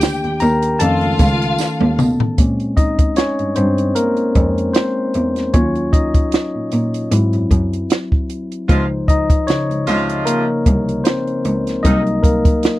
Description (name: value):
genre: lush 1970s-style soul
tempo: 76 BPM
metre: 4/4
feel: swing 54% on 16ths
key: unclear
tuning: A4 = 440 Hz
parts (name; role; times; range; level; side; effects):
- dark studio string section; second line; 0.0-2.0 s; F4 to G5; -22 LUFS; left 2 dB; none
- tine electric piano; accompaniment; 0.0-12.8 s; Db3 to Bb5; -18 LUFS; left 2 dB; none
- compact cocktail drum kit; drums; 0.0-12.8 s; hi-hat, kick drum, snare drum, toms; -16 LUFS; equal; none
- tambourine; percussion; 0.0-2.2 s; none; -33 LUFS; right 20 dB; none
- rich cello; bass; 0.2-12.5 s; C2 to Cb3; -19 LUFS; equal; none
- clear horn section; stabs; 8.7-12.0 s; C3 to F4; -20 LUFS; right 2 dB; none
room: little or no reverb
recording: dry, close 1970s-style studio recording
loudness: -14 LUFS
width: side -16 dB against mid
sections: 0.0-2.4 A section; 2.4-12.8 B section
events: tine electric piano solo 0.0-2.4, 2.4-12.8; drum fill 1.6-2.4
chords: 0.0 Cm9 (rootless); 0.8 Faug7; 2.4 Bbm9; 5.5 Ebm7; 7.1 Ab7b13 (rootless); 8.7 Dbmaj9; 11.8 Cm7b5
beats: 0.02 0.81 1.59 | 2.38 3.17 3.96 4.75 | 5.54 6.32 7.11 7.90 | 8.69 9.48 10.27 11.05 | 11.84 12.63